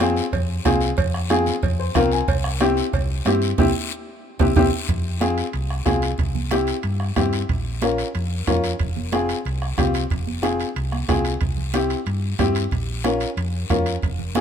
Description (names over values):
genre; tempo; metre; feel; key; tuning
latin, cumbia; 184 BPM; 4/4; straight; F harmonic minor; A4 = 440 Hz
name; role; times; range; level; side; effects
warm upright piano; accompaniment; 0.0-14.4 s; C4 to Ab5; -23 LUFS; left 2 dB; none
hollow-body short-scale fingered electric bass; bass; 0.0-14.4 s; F1 to G2; -24 LUFS; equal; none
bombo; percussion; 0.0-14.4 s; none; -25 LUFS; right 2 dB; none
congas; percussion; 0.0-14.4 s; none; -30 LUFS; right 6 dB; none
cowbell and timbales; percussion; 0.0-14.4 s; none; -31 LUFS; right 10 dB; none
guiro; percussion; 0.0-14.4 s; none; -34 LUFS; left 8 dB; none
room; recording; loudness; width
light reverb; minimal, uncompressed stereo recording; -19 LUFS; side -8 dB against mid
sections
0.0-4.9 A section; 4.9-14.4 B section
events
upright piano fill 1.6-2.3; band accent 3.6-4.9; drum fill 4.1-4.9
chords
0.0 Fm; 2.3 C; 4.9 Fm; 6.2 C; 7.5 Bbm; 8.8 Fm; 11.4 C; 12.7 Bbm